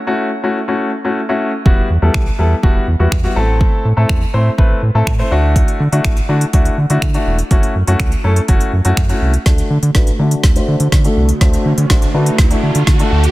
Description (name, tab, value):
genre	dance-pop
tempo	123 BPM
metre	4/4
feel	straight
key	unclear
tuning	A4 = 440 Hz
part	warm grand piano	accompaniment	0.1-13.2 s	G3 to C5	-18 LUFS	left 2 dB	low-pass filter
part	round analog bass	bass	1.7-13.3 s	E1 to D3	-14 LUFS	equal	sidechain pumping
part	deep house drum kit	drums	1.7-13.3 s	finger snaps, hi-hat, kick drum, snare drum	-14 LUFS	equal	soft clipping on snare
part	airy breathy pad	sustained chords	9.5-13.3 s	D3 to F#4	-22 LUFS	right 2 dB	chorus, sidechain pumping, low-pass filter
part	riser	sound effects	11.1-13.3 s	none	-26 LUFS	right 4 dB	none
room	little or no reverb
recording	dense, heavily limited modern master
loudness	-11 LUFS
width	side -18 dB against mid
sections	0.0-9.5 A section; 9.5-13.3 B section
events	build-up 9.5-13.3; drum fill 9.5-13.3; riser 11.1-13.3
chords	0.0 F#m7; 1.7 Emadd9; 3.4 Am; 5.3 Dadd9; 7.5 F#m7; 9.5 D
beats	0.19 0.68 1.17 | 1.66 2.14 2.63 3.12 | 3.61 4.09 4.58 5.07 | 5.56 6.05 6.53 7.02 | 7.51 8.00 8.48 8.97 | 9.46 9.95 10.44 10.92 | 11.41 11.90 12.39 12.88